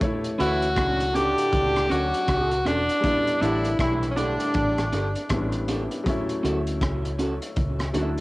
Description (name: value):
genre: lovers rock reggae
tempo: 79 BPM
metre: 4/4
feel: swing 60% on 16ths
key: D major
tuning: A4 = 440 Hz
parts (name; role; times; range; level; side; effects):
- warm baby grand piano; accompaniment; 0.0-8.2 s; F#3 to C#5; -31 LUFS; left 2 dB; cassette tape, analog delay
- crunchy breakbeat drum kit; drums; 0.0-8.2 s; hi-hat, kick drum, rim click; -30 LUFS; equal; cassette tape
- clear tenor saxophone; melody; 0.4-5.3 s; C#4 to G4; -24 LUFS; equal; cassette tape, tape echo
- mellow horn section; second line; 0.4-4.9 s; A2 to F#4; -29 LUFS; right 1 dB; cassette tape
- electric guitar through a small old amp; stabs; 0.4-8.1 s; C#4 to A4; -32 LUFS; right 1 dB; harmonic tremolo, cassette tape, analog delay
- vintage muted fingered electric bass; bass; 0.4-8.2 s; E1 to D2; -28 LUFS; equal; none
room: light reverb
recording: home recording on cassette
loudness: -21 LUFS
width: side -20 dB against mid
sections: 0.0-8.2 A section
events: none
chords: 0.0 Dmaj7; 3.0 A7sus4; 6.1 Dmaj7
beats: | 0.01 0.77 1.52 2.28 | 3.04 3.79 4.55 5.30 | 6.06 6.81 7.57